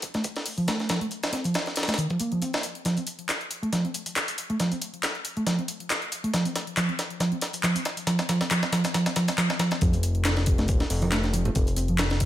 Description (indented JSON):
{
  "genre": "breakbeat, breaks",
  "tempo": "138 BPM",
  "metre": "4/4",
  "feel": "swing 55% on 16ths",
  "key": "unclear",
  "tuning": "A4 = 440 Hz",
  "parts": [
    { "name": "breakbeat sampler-style drum kit", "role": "drums", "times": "0.0-12.3 s", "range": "hi-hat, kick drum, snare drum", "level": "-28 LUFS", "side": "equal", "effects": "high-pass filter on hats, studio reverb, high-pass filter on snare, high-pass filter on kick" },
    { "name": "house drum kit", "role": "drums", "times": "0.0-12.3 s", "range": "handclaps, hi-hat", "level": "-32 LUFS", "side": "left 1 dB", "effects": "studio reverb" },
    { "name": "hollow-body short-scale picked electric bass", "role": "riff", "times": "0.1-12.0 s", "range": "Eb3 to C4", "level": "-27 LUFS", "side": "right 1 dB", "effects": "low-pass filter" },
    { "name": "fat analog bass", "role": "bass", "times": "9.8-12.3 s", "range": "Eb1 to F1", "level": "-25 LUFS", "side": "equal", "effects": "none" },
    { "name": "congas", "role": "percussion", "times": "11.0-11.5 s", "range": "none", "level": "-32 LUFS", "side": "right 3 dB", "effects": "none" }
  ],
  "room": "light reverb",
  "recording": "none",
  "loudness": "-24 LUFS",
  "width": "side -13 dB against mid",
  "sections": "0.0-9.8 A section; 9.8-12.3 B section",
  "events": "build-up 0.0-9.8; drum fill 2.9-9.8; drop 9.8-12.3",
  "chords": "0.0 F5; 9.8 F7"
}